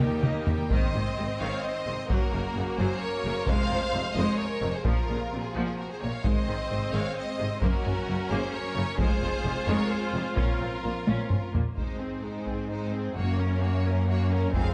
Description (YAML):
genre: cinematic, epic orchestral film score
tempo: 130 BPM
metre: 3/4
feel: straight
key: Ab mixolydian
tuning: A4 = 442 Hz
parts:
  - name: clear symphonic violin section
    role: melody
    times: 0.0-14.7 s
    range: Gb4 to F5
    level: -38 LUFS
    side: equal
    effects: none
  - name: clear symphonic violin section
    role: second line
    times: 0.0-14.7 s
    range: C4 to G5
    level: -38 LUFS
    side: equal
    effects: none
  - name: clear symphonic viola section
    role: accompaniment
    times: 0.0-14.7 s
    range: C3 to G4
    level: -36 LUFS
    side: equal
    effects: none
  - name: mellow French horn section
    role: sustained chords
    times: 0.0-14.7 s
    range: C3 to Db4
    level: -41 LUFS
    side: equal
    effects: none
  - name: rich symphonic cello section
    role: bass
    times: 0.0-14.7 s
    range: Eb2 to Bb2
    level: -34 LUFS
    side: equal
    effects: none
  - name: rich symphonic double bass section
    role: bass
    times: 0.0-14.7 s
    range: F1 to Eb2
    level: -36 LUFS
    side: equal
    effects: none
  - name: solo taiko drums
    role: drums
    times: 0.0-14.7 s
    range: none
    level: -31 LUFS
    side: equal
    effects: none
room: moderate scoring stage reverb, RT60 1.9 s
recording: nothing above 10.7 kHz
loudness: -28 LUFS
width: mono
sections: 0.7-11.8 A section; 11.8-14.7 B section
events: drum fill 0.0-0.7, 11.1-11.8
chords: 0.0 Eb; 0.7 Ab; 2.1 Gb; 3.5 Fm; 4.8 Bbsus2; 6.2 Ab; 7.6 Gb; 9.0 Fm; 10.4 Bbmadd9; 11.8 Ab; 13.2 Gb